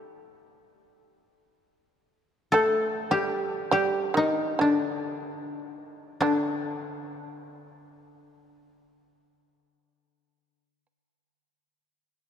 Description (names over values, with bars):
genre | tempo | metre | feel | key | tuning
japanese traditional, Japanese chamber music | 50-80 BPM | 2/4 | rubato | unclear | A4 = 440 Hz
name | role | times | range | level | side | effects
koto | melody | 0.0-10.8 s | D4 to A4 | -26 LUFS | left 2 dB | none
shamisen | second line | 2.5-10.9 s | D3 to A3 | -30 LUFS | right 3 dB | none
room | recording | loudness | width
wet cathedral reverb, RT60 3.9 s | none | -24 LUFS | side -9 dB against mid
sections
0.0-6.2 A section; 6.2-10.9 B section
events
slowing down 2.5-6.2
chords
none